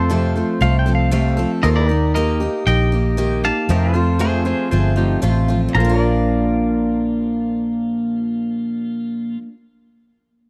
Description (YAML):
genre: honky-tonk and classic country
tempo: 117 BPM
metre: 4/4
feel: straight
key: Bb major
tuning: A4 = 439 Hz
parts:
  - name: twangy electric guitar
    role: melody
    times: 0.0-9.4 s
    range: A4 to Bb5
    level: -27 LUFS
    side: equal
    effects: none
  - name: picked steel-string acoustic guitar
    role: accompaniment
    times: 0.0-9.6 s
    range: F2 to A4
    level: -22 LUFS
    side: equal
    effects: none
  - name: pedal steel guitar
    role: sustained chords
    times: 0.0-9.4 s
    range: Eb4 to D5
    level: -30 LUFS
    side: equal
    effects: subtle chorus
  - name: vintage muted fingered electric bass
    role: bass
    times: 0.0-9.4 s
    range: G1 to F2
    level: -21 LUFS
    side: equal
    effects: none
  - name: pedal steel guitar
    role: second line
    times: 0.6-9.4 s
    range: Eb4 to G5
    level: -28 LUFS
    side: equal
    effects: none
room: digital ambience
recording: dry, close 1970s-style studio recording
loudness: -18 LUFS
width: mono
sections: 0.0-5.7 A section; 5.7-9.9 B section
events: none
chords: 0.0 F; 1.6 Eb; 3.7 F; 5.7 Bb